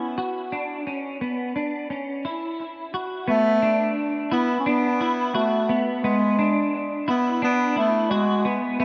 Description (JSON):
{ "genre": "dream pop", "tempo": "87 BPM", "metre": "4/4", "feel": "straight", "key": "B minor, B dorian from 3.3 s", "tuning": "A4 = 441 Hz", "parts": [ { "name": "warm bass clarinet", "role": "melody", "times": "0.0-8.8 s", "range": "G#3 to C#4", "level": "-24 LUFS", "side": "equal", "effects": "low-pass filter, dub echo" }, { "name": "clean electric guitar", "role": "arpeggios", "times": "0.0-8.8 s", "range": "B3 to F#4", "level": "-28 LUFS", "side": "equal", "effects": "ensemble chorus, low-pass filter, dub echo" } ], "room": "wet spring reverb, RT60 1.9 s", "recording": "echo-heavy mix, nothing above 7.5 kHz", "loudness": "-24 LUFS", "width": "mono", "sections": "0.0-3.3 A section; 3.3-8.8 B section", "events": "none", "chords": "0.0 B5; 0.5 Bmadd9; 1.9 F#5; 3.3 Bm7", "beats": "| 0.52 1.21 1.90 2.59 | 3.28 3.97 4.66 5.35 | 6.04 6.73 7.42 8.11 | 8.80" }